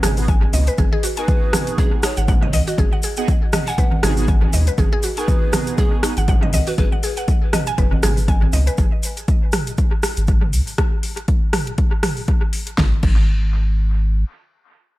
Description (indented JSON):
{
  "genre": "afro house",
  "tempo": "120 BPM",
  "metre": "4/4",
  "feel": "swing 56% on 16ths",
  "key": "G# minor",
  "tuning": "A4 = 440 Hz",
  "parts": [
    { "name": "mallet-like synth pluck", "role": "arpeggios", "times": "0.0-8.8 s", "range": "D#4 to G#5", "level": "-26 LUFS", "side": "equal", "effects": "chorus, sidechain pumping, dub echo" },
    { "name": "warm sub bass", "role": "bass", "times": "0.0-14.2 s", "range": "F#1 to D#2", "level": "-18 LUFS", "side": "equal", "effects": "sidechain pumping" },
    { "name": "deep house drum kit", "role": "drums", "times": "0.0-13.2 s", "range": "crash cymbal, hi-hat, rim click, snare drum, toms", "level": "-24 LUFS", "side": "equal", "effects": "overdrive, studio reverb, dub echo" },
    { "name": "congas", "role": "percussion", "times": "0.0-8.6 s", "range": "none", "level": "-26 LUFS", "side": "right 2 dB", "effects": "none" },
    { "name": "tube shaker", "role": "percussion", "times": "0.0-10.8 s", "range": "none", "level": "-31 LUFS", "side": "right 2 dB", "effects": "none" },
    { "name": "mellow synth brass", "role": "stabs", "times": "0.2-6.1 s", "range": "B3 to G#4", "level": "-29 LUFS", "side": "right 4 dB", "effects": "chorus, phaser, sidechain pumping, dub echo" },
    { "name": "electronic kick drum", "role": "drums", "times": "0.3-13.2 s", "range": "none", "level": "-18 LUFS", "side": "equal", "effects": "overdrive, studio reverb" },
    { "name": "breathy mellow pan flute", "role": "melody", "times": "1.2-6.9 s", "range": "G#4 to F#5", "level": "-31 LUFS", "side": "equal", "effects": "dub echo" }
  ],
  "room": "digital ambience",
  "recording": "echo-heavy mix",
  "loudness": "-16 LUFS",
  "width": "side -18 dB against mid",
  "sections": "0.0-12.8 A section; 12.8-15.0 B section",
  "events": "drop 0.0-12.8",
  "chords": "0.0 G#m7; 12.8 N.C."
}